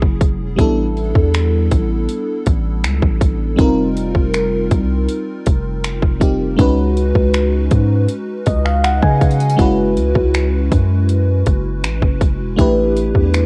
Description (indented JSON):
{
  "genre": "contemporary R&B",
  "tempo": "80 BPM",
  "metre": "4/4",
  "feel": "straight",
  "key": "unclear",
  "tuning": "A4 = 440 Hz",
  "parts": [
    { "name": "FM electric piano with soft pad layer", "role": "accompaniment", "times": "0.0-13.5 s", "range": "F#3 to G#5", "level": "-20 LUFS", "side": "equal", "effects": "chorus, phaser, cassette tape" },
    { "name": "long sustained 808-style bass", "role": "bass", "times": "0.0-13.5 s", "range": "E1 to C#3", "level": "-20 LUFS", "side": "equal", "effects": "none" },
    { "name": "trap drum kit", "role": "drums", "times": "0.0-13.5 s", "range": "finger snaps, hi-hat, kick drum", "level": "-19 LUFS", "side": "equal", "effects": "overdrive, cassette tape" }
  ],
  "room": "digital ambience",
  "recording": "home recording on cassette",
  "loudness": "-16 LUFS",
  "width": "mono",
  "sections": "0.0-13.5 A section",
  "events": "FM electric piano fill 8.1-9.6",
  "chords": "0.0 F#9sus4; 0.6 A9sus4; 3.6 F9sus4; 6.6 C#9sus4; 9.6 F#9sus4; 12.6 A9sus4",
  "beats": "| 0.59 1.34 2.09 2.84 | 3.59 4.34 5.09 5.84 | 6.59 7.34 8.09 8.84 | 9.59 10.34 11.09 11.84 | 12.59 13.34"
}